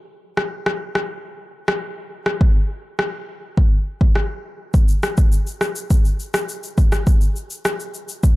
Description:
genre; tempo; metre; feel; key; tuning
dancehall; 103 BPM; 4/4; straight; none; none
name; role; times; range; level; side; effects
afro-pop drum kit; drums; 0.4-8.4 s; kick drum, rim click, shaker; -17 LUFS; equal; none
room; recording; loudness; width
little or no reverb; dark, warm production; -18 LUFS; side -19 dB against mid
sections
0.0-8.4 A section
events
break 0.0-2.4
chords
none

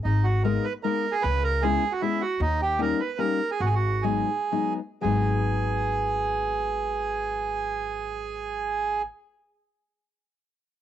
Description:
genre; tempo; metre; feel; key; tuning
musette waltz; 109-157 BPM; 3/4; rubato; G# minor; A4 = 440 Hz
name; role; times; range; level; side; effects
bandoneon; melody; 0.0-9.0 s; D#4 to B4; -26 LUFS; right 5 dB; cassette tape, plate reverb
upright bass; bass; 0.0-9.0 s; G#1 to D#2; -28 LUFS; left 1 dB; none
fingerpicked steel-string acoustic guitar; accompaniment; 0.4-9.1 s; F#3 to E4; -29 LUFS; left 8 dB; cassette tape
room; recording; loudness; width
moderate booth ambience, RT60 0.2 s; home recording on cassette; -24 LUFS; side -11 dB against mid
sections
0.1-5.0 A section; 5.0-8.3 B section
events
slowing down 2.4-5.0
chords
0.1 G#madd9; 1.2 C#m7; 2.4 D#7; 3.6 G#m7

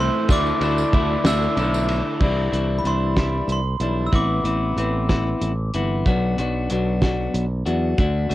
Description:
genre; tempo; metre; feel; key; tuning
indie rock; 62 BPM (dotted quarters); 6/8; straight; C lydian; A4 = 440 Hz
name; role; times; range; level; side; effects
glockenspiel with brass mallets; melody; 0.0-5.7 s; B5 to E6; -27 LUFS; right 1 dB; analog delay
barky tine electric piano; second line; 0.0-1.9 s; C5 to E5; -31 LUFS; moving between right 3 dB and right 11 dB; auto-pan
clean electric guitar; riff; 0.0-8.3 s; A2 to F#4; -24 LUFS; left 3 dB; none
crunchy overdriven guitar; riff; 0.0-2.2 s; E3 to D4; -29 LUFS; right 6 dB; ensemble chorus
modern bright fingered electric bass; bass; 0.0-8.3 s; G1 to E2; -23 LUFS; equal; none
cloth-damped thuddy drum kit; drums; 0.3-8.3 s; crash cymbal, hi-hat, kick drum, ride cymbal, snare drum; -23 LUFS; equal; cassette tape
tambourine; percussion; 0.3-2.0 s; none; -39 LUFS; right 9 dB; none
room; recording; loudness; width
little or no reverb; home recording on cassette; -18 LUFS; side -15 dB against mid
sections
0.0-2.2 A section; 2.2-8.3 B section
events
none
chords
0.3 Dsus2; 2.2 Cadd9; 4.1 Amadd9; 6.1 Bm

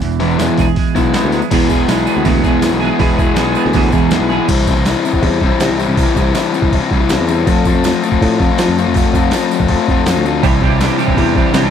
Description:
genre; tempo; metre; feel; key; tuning
indie rock; 161 BPM; 4/4; straight; unclear; A4 = 443 Hz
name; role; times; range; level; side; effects
twelve-string electric guitar; riff; 0.0-4.5, 10.4-11.7 s; E2 to G#4; -17 LUFS; right 14 dB; lush chorus
picked electric bass; bass; 0.0-11.7 s; E1 to F3; -18 LUFS; right 1 dB; none
boom bap sampler-style drum kit; drums; 0.0-11.6 s; crash cymbal, hi-hat, kick drum, snare drum; -17 LUFS; right 1 dB; none
tambourine; percussion; 0.0-11.6 s; none; -34 LUFS; right 20 dB; none
raw garage guitar; riff; 0.2-11.7 s; C3 to G#4; -15 LUFS; left 7 dB; overdrive
room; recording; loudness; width
little or no reverb; dry, close 1970s-style studio recording; -11 LUFS; side -8 dB against mid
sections
0.0-1.5 A section; 1.5-4.5 B section; 4.5-11.7 C section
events
kick and snare drop out 4.3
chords
0.0 E; 4.5 C; 7.5 F; 10.4 Cadd9

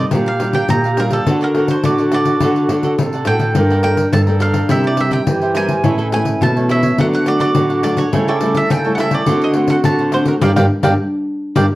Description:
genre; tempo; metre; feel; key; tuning
samba and choro; 105 BPM; 4/4; straight; unclear; A4 = 440 Hz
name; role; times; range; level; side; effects
bowl-back mandolin; melody; 0.0-11.7 s; A4 to Bb5; -21 LUFS; right 2 dB; none
wooden flute; second line; 0.0-11.6 s; E4 to Bb4; -21 LUFS; right 2 dB; none
cavaquinho; accompaniment; 0.0-11.7 s; D4 to Bb5; -25 LUFS; right 3 dB; none
nylon-string guitar; accompaniment; 0.0-11.7 s; G2 to A4; -23 LUFS; left 2 dB; none
nylon-string guitar; bass; 0.0-11.7 s; G2 to E3; -17 LUFS; equal; none
pandeiro; percussion; 0.1-11.7 s; none; -20 LUFS; left 2 dB; none
room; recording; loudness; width
moderate large studio reverb, RT60 0.8 s; worn, warbling old tape, cassette tape, warbly pitch drift; -13 LUFS; side -17 dB against mid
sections
0.0-11.8 A section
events
band accent 10.4-11.8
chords
0.1 Gm7/Bb; 1.3 D; 3.6 Gmadd9; 4.7 C7; 5.8 A; 7.0 D; 8.1 A7/C#; 9.3 D7; 10.4 Gm7

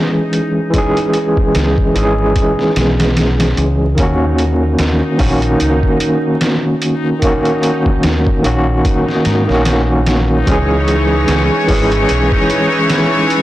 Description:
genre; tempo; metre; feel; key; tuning
trip hop; 74 BPM; 4/4; swing 57% on 16ths; C# dorian; A4 = 439 Hz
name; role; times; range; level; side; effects
overdriven tine electric piano; accompaniment; 0.0-13.4 s; D#3 to G#4; -14 LUFS; equal; tremolo, tape echo
backwards swelling texture; texture; 0.0-13.4 s; D#4; -24 LUFS; equal; built-in reverb
trip hop sampler-style drum kit; drums; 0.3-13.4 s; hi-hat, kick drum, snare drum; -18 LUFS; equal; none
deep dub fingered electric bass; bass; 1.6-12.3 s; G#1 to G#2; -16 LUFS; equal; none
clear studio string section; sustained chords; 10.5-13.4 s; E3 to C#5; -16 LUFS; left 2 dB; vintage 12-bit sampler grit
room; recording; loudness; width
light reverb; blown-out, overdriven recording, vinyl crackle, overdrive; -11 LUFS; side -15 dB against mid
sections
0.0-13.4 A section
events
none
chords
0.0 C#m; 4.0 D#m7; 10.5 C#m

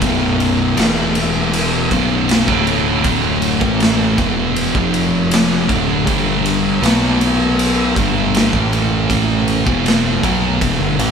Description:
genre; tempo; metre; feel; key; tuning
stoner and doom metal; 79 BPM; 4/4; straight; B minor; A4 = 440 Hz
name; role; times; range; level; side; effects
thick fuzz guitar; riff; 0.0-11.1 s; B1 to B3; -19 LUFS; left 7 dB; distortion
thick fuzz guitar; riff; 0.0-11.1 s; B1 to B3; -18 LUFS; right 7 dB; distortion
growling picked electric bass; bass; 0.0-11.1 s; B0 to B1; -23 LUFS; equal; overdrive
raw garage drum kit; drums; 0.0-11.1 s; kick drum, ride cymbal, snare drum; -18 LUFS; equal; none
room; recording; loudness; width
light reverb; band playing live in one room; -13 LUFS; side -6 dB against mid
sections
0.0-11.1 A section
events
none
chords
0.0 B5; 0.8 E5; 1.9 B5; 2.5 D5; 3.6 Esus4; 4.7 F5; 5.7 D5; 6.1 G5; 6.8 B5; 8.0 G5; 8.5 A5; 9.7 G5

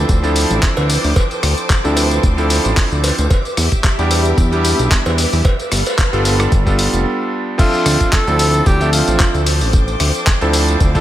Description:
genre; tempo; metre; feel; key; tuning
nu-disco, nu disco; 112 BPM; 4/4; swing 55% on 16ths; D dorian; A4 = 439 Hz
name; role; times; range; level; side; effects
clear electric grand piano; accompaniment; 0.0-11.0 s; F3 to E5; -19 LUFS; right 1 dB; sidechain pumping, tape echo
string machine, full ensemble; sustained chords; 0.0-11.0 s; G4 to D6; -24 LUFS; left 1 dB; ensemble chorus, sidechain pumping
fat analog bass; bass; 0.0-11.0 s; F1 to E2; -16 LUFS; equal; none
dusty soul sampler-style drum kit; drums; 0.1-11.0 s; crash cymbal, handclaps, hi-hat, rim click, tambourine; -20 LUFS; left 1 dB; small room ambience
electronic kick drum; drums; 0.1-11.0 s; none; -14 LUFS; equal; small room ambience
cowbell; percussion; 0.8-6.4 s; none; -25 LUFS; right 2 dB; none
breathy tenor saxophone; melody; 7.6-9.4 s; F4 to A4; -19 LUFS; right 1 dB; tape echo
room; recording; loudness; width
light reverb, digital ambience; none; -12 LUFS; side -13 dB against mid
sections
0.0-7.6 A section; 7.6-11.0 B section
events
break 7.1-7.6; drop 7.6-11.0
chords
0.0 Dm7; 3.3 Em7; 5.4 G9; 7.6 Dm7

